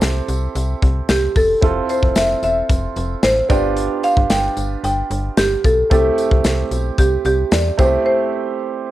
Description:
1980s-style pop; 112 BPM; 4/4; straight; C major; A4 = 442 Hz
marimba with medium hard mallets; melody; 0.0-8.9 s; G4 to G5; -18 LUFS; equal; cassette tape, plate reverb
clear grand piano; accompaniment; 0.0-8.9 s; A3 to A4; -23 LUFS; right 6 dB; cassette tape, plate reverb
slap-like FM bass; bass; 0.0-8.0 s; E1 to E2; -21 LUFS; left 1 dB
modern studio drum kit; drums; 0.0-7.9 s; hi-hat, kick drum, snare drum; -18 LUFS; left 1 dB; cassette tape
tambourine; percussion; 0.0-7.9 s; -37 LUFS; left 8 dB
light reverb; home recording on cassette; -15 LUFS; side -15 dB against mid
0.0-8.9 A section
break 8.1-8.9
0.0 Am7/C; 1.6 Fmaj7; 3.5 G7; 5.9 C6; 7.8 Am7/C

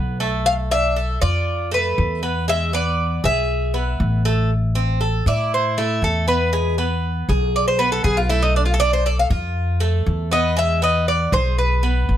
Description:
latin, Cuban son and guajira; 119 BPM; 4/4; straight; A harmonic minor; A4 = 440 Hz
Cuban tres; arpeggios; 0.0-12.2 s; G#3 to A4; -24 LUFS; right 1 dB
upright bass; bass; 0.0-12.2 s; A1 to A2; -20 LUFS; equal
Cuban tres; melody; 0.5-12.2 s; D4 to F5; -20 LUFS; equal
little or no reverb; close, detailed microphones; -17 LUFS; side -11 dB against mid
0.0-4.5 A section; 4.5-12.2 B section
Cuban tres solo 4.5-12.2
0.5 Bm7b5; 2.5 E7; 4.5 Am; 6.5 E; 8.5 B7(b5, no3); 10.6 E

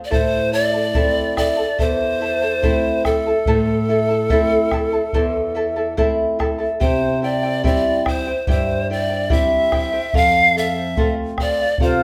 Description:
andean folk, Andean ensemble; 72 BPM; 4/4; straight; A minor; A4 = 440 Hz
breathy bright pan flute; melody; 0.0-12.0 s; A4 to F5; -22 LUFS; equal
charango; accompaniment; 0.0-12.0 s; E4 to A5; -24 LUFS; equal
flamenco guitar; accompaniment; 0.1-12.0 s; E2 to F4; -27 LUFS; equal
bombo; percussion; 0.1-12.0 s; -25 LUFS; equal
bright large quena; second line; 11.8-12.0 s; F4; -22 LUFS; equal
wet large studio reverb, RT60 0.9 s; band playing live in one room; -18 LUFS; mono
0.0-6.8 A section; 6.8-12.0 A section
0.1 Am; 6.8 C; 10.1 F

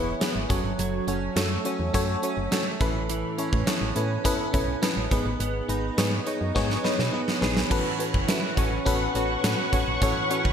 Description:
1980s-style pop; 104 BPM; 4/4; straight; A4 = 439 Hz
FM electric piano; accompaniment; 0.0-10.5 s; G#2 to C#5; -28 LUFS; left 3 dB; chorus
direct-recorded clean electric guitar; riff; 0.0-10.5 s; E3 to G#4; -31 LUFS; right 6 dB; ensemble chorus, ping-pong delay
solid FM bass; bass; 0.0-10.5 s; E1 to B2; -30 LUFS; equal
gated 80s drum kit; drums; 0.2-10.5 s; crash cymbal, hi-hat, kick drum, snare drum; -27 LUFS; right 1 dB; gated reverb
string machine, violas; sustained chords; 7.7-10.5 s; B4 to C#6; -30 LUFS; equal; ensemble chorus
moderate lush hall reverb, RT60 2.2 s; bright 1980s-style digital production; -23 LUFS; side -8 dB against mid
0.0-7.7 A section; 7.7-10.5 B section
drum fill 6.6-7.7
0.0 E; 0.5 F#m; 2.8 Aadd9; 5.1 G#m; 7.7 A69

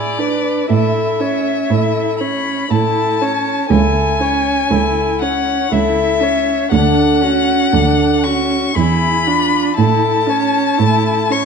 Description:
classical, slow romantic movement for string quartet; 59 BPM; 3/4; rubato; A major; A4 = 442 Hz
rich violin; melody; 0.0-11.4 s; D5 to C#6; -18 LUFS; left 8 dB
dark violin; second line; 0.0-11.4 s; F4 to C#5; -21 LUFS; left 4 dB
rich viola; accompaniment; 0.0-11.4 s; C#4 to E4; -19 LUFS; right 5 dB
warm cello; bass; 0.0-11.4 s; C#2 to A2; -18 LUFS; right 5 dB
moderate recital hall reverb, RT60 1.7 s; dark, warm production, nothing above 10.7 kHz; -13 LUFS; side -6 dB against mid
0.0-11.4 A section
0.0 E7/A; 0.7 A; 3.7 A/C#; 6.7 Dmaj7; 8.8 E7b9; 9.8 A

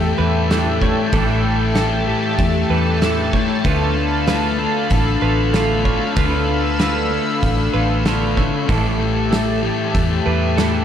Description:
rock, shoegaze and dream pop; 95 BPM; 4/4; straight; A4 = 440 Hz
chorused pulse-width pad; sustained chords; 0.0-10.8 s; G4 to E6; -22 LUFS; right 1 dB
direct-recorded clean electric guitar; arpeggios; 0.0-10.8 s; G4 to C#5; -26 LUFS; right 9 dB; analog chorus, tape echo
electric guitar at the edge of break-up; riff; 0.0-10.8 s; A2 to F4; -28 LUFS; right 9 dB; reverse reverb
thick fuzz guitar; riff; 0.0-10.8 s; A2 to D4; -21 LUFS; left 9 dB; distortion, analog chorus
vintage muted fingered electric bass; bass; 0.0-10.8 s; A1 to E2; -21 LUFS; equal
loose indie drum kit; drums; 0.5-10.7 s; hi-hat, kick drum, snare drum; -22 LUFS; equal
moderate plate reverb, RT60 1.4 s, studio reverb; dreamy mix soaked in reverb; -15 LUFS; side -9 dB against mid
0.0-10.8 A section
0.0 A7sus4; 3.6 Dm6; 8.7 A7sus4

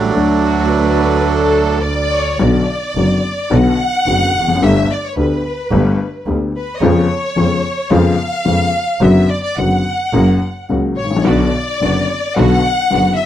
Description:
tango; 108 BPM; 4/4; rubato; B minor; A4 = 440 Hz
bandoneon; melody; 0.0-1.8 s; F#3 to D4; -15 LUFS; right 5 dB
warm upright piano; accompaniment; 0.0-13.2 s; F#1 to G4; -16 LUFS; left 4 dB
rich studio string section; stabs; 0.0-2.3, 11.3-13.2 s; A3 to F#4; -26 LUFS; right 11 dB
clear double bass; bass; 0.0-13.2 s; E#1 to E#2; -18 LUFS; right 2 dB
rich studio violin section; second line; 0.4-13.3 s; F#4 to F#5; -18 LUFS; left 1 dB
little or no reverb; dry, close 1970s-style studio recording; -12 LUFS; side -11 dB against mid
0.0-2.4 A section; 2.4-13.3 B section
violin section solo 2.4-13.3
0.2 D; 2.4 Bm; 4.6 Gadd9; 6.8 C#7/E#; 9.0 Bm/F#; 10.1 F#; 11.3 Bm

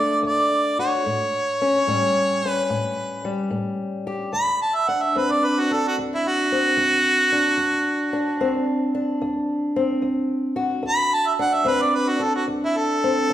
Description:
acoustic country blues, solo or duo; 74 BPM; 4/4; swing 67% on 8ths; D mixolydian; A4 = 440 Hz
warm harmonica; melody; 0.0-13.3 s; E4 to B5; -20 LUFS; right 1 dB
fingerpicked old ladder-braced acoustic guitar; accompaniment; 0.0-13.3 s; D2 to G4; -23 LUFS; left 2 dB
wet recital hall reverb, RT60 1.4 s; recorded in a church or concert hall; -19 LUFS; side -12 dB against mid
0.0-4.3 A section; 4.3-13.3 B section
harmonica solo 4.3-13.3
0.0 D; 1.1 A7; 4.3 D7

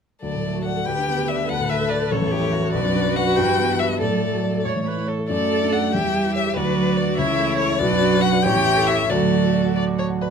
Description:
quick classical-period movement for piano quintet; 95 BPM (dotted quarters); 6/8; straight; D major; A4 = 440 Hz
rich violin; melody; 0.2-9.8 s; B4 to G5; -23 LUFS; left 7 dB
rich violin; second line; 0.2-10.3 s; A4 to E5; -29 LUFS; left 2 dB
warm cello; second line; 0.2-10.2 s; D3 to A3; -25 LUFS; right 10 dB
dark baby grand piano; accompaniment; 0.2-10.3 s; A1 to D6; -23 LUFS; left 2 dB
rich viola; accompaniment; 0.9-10.1 s; E4 to C#5; -26 LUFS; right 5 dB
light reverb; close, detailed microphones; -18 LUFS; side -6 dB against mid
0.2-10.3 A section
0.2 D; 0.9 G/D; 1.5 D5; 2.1 A; 2.7 Bm; 3.4 Em/G; 4.0 D/A; 4.6 A; 5.3 D/F#; 5.9 C#dim/E; 6.6 Bm/D; 7.2 A/C#; 7.8 Bm; 8.4 A7; 9.1 D

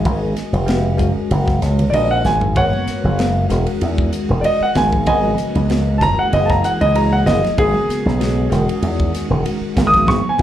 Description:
electric jazz fusion; 96 BPM; 4/4; swing 54% on 16ths; G# minor; A4 = 440 Hz
warm grand piano; melody; 0.0-10.4 s; G#4 to D#6; -17 LUFS; right 1 dB; slapback echo
bell-like tine electric piano; accompaniment; 0.0-10.4 s; G#3 to B4; -24 LUFS; left 1 dB; medium stereo tremolo, slapback echo
slap bass with an envelope filter; bass; 0.1-10.4 s; E1 to E2; -17 LUFS; equal
crisp fusion drum kit; drums; 0.1-10.4 s; hi-hat, kick drum, ride cymbal, snare drum, toms; -24 LUFS; equal
congas; percussion; 0.5-10.4 s; -26 LUFS; right 1 dB
ensemble organ-string; sustained chords; 2.6-10.4 s; C#3 to G#4; -27 LUFS; equal; ensemble chorus
light reverb; live gig heard through the venue's PA, club ambience; -14 LUFS; side -11 dB against mid
0.0-10.4 A section
grand piano solo 0.0-10.4; drum fill 2.2-2.6; band accent 10.1-10.4
0.0 G#m11; 1.0 F#add9; 2.6 G#m11; 3.5 Emaj9; 4.8 G#m11; 6.0 F#9; 7.6 G#m11; 8.5 Emaj9; 9.8 G#m11

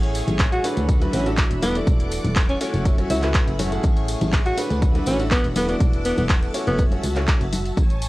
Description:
piano house; 122 BPM; 4/4; straight; A major; A4 = 437 Hz
string machine, violins; sustained chords; 0.0-8.1 s; F#4 to D6; -32 LUFS; equal; ensemble chorus, sidechain pumping
bright grand piano; riff; 0.0-7.4 s; A2 to F#5; -28 LUFS; equal; sidechain pumping, tape echo
solid FM bass; bass; 0.0-8.1 s; E1 to D2; -25 LUFS; equal; sidechain pumping
punchy analog drum machine; drums; 0.0-8.1 s; handclaps, hi-hat; -28 LUFS; equal
tambourine and congas; percussion; 0.2-8.1 s; -32 LUFS; left 1 dB
electronic kick drum; drums; 0.4-7.9 s; -19 LUFS; equal
breathy alto saxophone; melody; 0.5-6.8 s; B3 to F#4; -26 LUFS; equal; tape echo
digital ambience; dry, gritty hardware recording, cassette tape; -18 LUFS; side -19 dB against mid
0.0-8.1 A section
0.0 Amaj7; 0.9 D69; 1.6 E9sus4; 2.9 F#m7; 3.8 Amaj7; 4.8 D69; 5.6 E9sus4; 6.8 F#m7

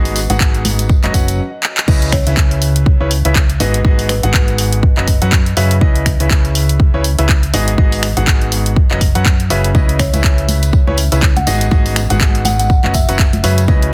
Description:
piano house; 122 BPM; 4/4; swing 58% on 16ths; C# minor; A4 = 440 Hz
clear concert grand piano; riff; 0.0-13.9 s; G#2 to F#5; -22 LUFS; equal; sidechain pumping, low-pass filter, tape echo
hollow-body short-scale fingered electric bass; bass; 0.0-13.9 s; F#1 to F#2; -18 LUFS; equal; sidechain pumping
warbly tape-like pad; texture; 0.2-13.9 s; C#4 to E5; -37 LUFS; equal
house drum kit; drums; 0.1-13.9 s; crash cymbal, finger snaps, handclaps, hi-hat; -21 LUFS; equal
tambourine and congas; percussion; 0.2-1.4, 9.7-13.8 s; -27 LUFS; equal
electronic kick drum; drums; 0.4-13.8 s; -15 LUFS; equal
kalimba; melody; 2.1-4.6, 10.0-13.4 s; B4 to F#5; -26 LUFS; equal; tape echo
studio reverb; dense, heavily limited modern master; -13 LUFS; mono
0.0-1.9 A section; 1.9-13.9 B section
stop 1.4-1.9; drum fill 1.6; drop 1.9-13.9
0.0 G#m7; 0.9 F#sus4; 1.9 C#m9; 3.6 G#m7; 4.8 F#7sus4; 5.8 C#m9; 7.5 G#m7; 8.8 F#7sus4; 9.7 C#m9; 11.5 G#m7; 12.7 F#7sus4

